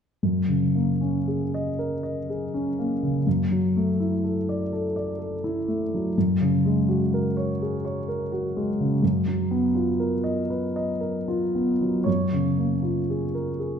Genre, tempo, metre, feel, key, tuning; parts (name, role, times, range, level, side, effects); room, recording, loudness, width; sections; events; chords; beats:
classical, impressionist solo piano; 54-64 BPM; 3/4; rubato; F# major; A4 = 441 Hz
warm concert grand piano; solo; 0.2-13.8 s; F#2 to D#5; -22 LUFS; equal
wet recital hall reverb, RT60 1.5 s; -22 LUFS; side -7 dB against mid
0.2-12.1 A section; 12.1-13.8 B section
0.2 F#69; 3.3 Dadd9/F#; 6.2 F#add9; 9.0 Bmaj7#11/F#; 12.1 F#maj9
| 0.23 1.26 2.27 | 3.26 4.22 5.18 | 6.15 7.10 8.07 | 9.02 9.98 11.00 | 12.07 13.10